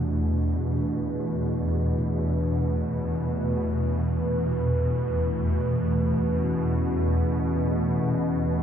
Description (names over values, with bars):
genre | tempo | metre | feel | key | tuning
dark ambient drone | free time | none | none | unclear | A4 = 438 Hz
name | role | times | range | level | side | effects
deep dark ambient pad | sustained chords | 0.0-8.6 s | E3 to B4 | -27 LUFS | equal | chorus, built-in reverb
gamelan-type bossed gongs | arpeggios | 0.0-8.6 s | B2 to A3 | -38 LUFS | equal | none
swarming drone | drone | 0.0-8.6 s | E2 to B2 | -25 LUFS | equal | built-in reverb
room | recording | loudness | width
moderate huge ambient reverb, RT60 9.3 s | in a vast, echoing space | -23 LUFS | side -8 dB against mid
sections
0.0-8.6 A section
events
none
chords
0.0 Em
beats
free time